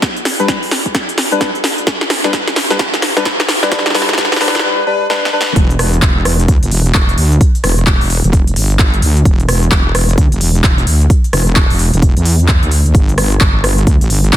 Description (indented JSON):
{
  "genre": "bass house",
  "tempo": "130 BPM",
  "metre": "4/4",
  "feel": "swing 62% on 16ths",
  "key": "unclear",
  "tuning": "A4 = 444 Hz",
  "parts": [
    { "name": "big-room dance drum kit", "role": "drums", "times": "0.0-14.4 s", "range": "handclaps, hi-hat, rim click, snare drum", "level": "-15 LUFS", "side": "equal", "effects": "none" },
    { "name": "electronic kick drum", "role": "drums", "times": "0.0-14.4 s", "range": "none", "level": "-12 LUFS", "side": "equal", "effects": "none" },
    { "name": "percussive organ stab", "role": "stabs", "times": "0.4-5.5 s", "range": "G3 to B4", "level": "-18 LUFS", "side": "left 3 dB", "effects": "analog chorus, vintage 12-bit sampler grit, sidechain pumping, dub echo" },
    { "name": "wobble bass", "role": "bass", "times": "5.6-14.4 s", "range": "E1 to E2", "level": "-12 LUFS", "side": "equal", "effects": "chorus, tube saturation, sidechain pumping" }
  ],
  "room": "light reverb",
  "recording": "dense, heavily limited modern master, high-pass filter",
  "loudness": "-10 LUFS",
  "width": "side -12 dB against mid",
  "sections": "0.0-5.6 A section; 5.6-14.4 B section",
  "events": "build-up 0.0-5.6; drum fill 0.0-4.6, 5.1-5.6; drop 5.6-14.4",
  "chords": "0.0 G; 5.6 N.C.",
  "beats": "| 0.02 0.48 0.95 1.41 | 1.87 2.33 2.79 3.25 | 3.72 4.18 4.64 5.10 | 5.56 6.02 6.49 6.95 | 7.41 7.87 8.33 8.79 | 9.25 9.72 10.18 10.64 | 11.10 11.56 12.02 12.48 | 12.95 13.41 13.87 14.33"
}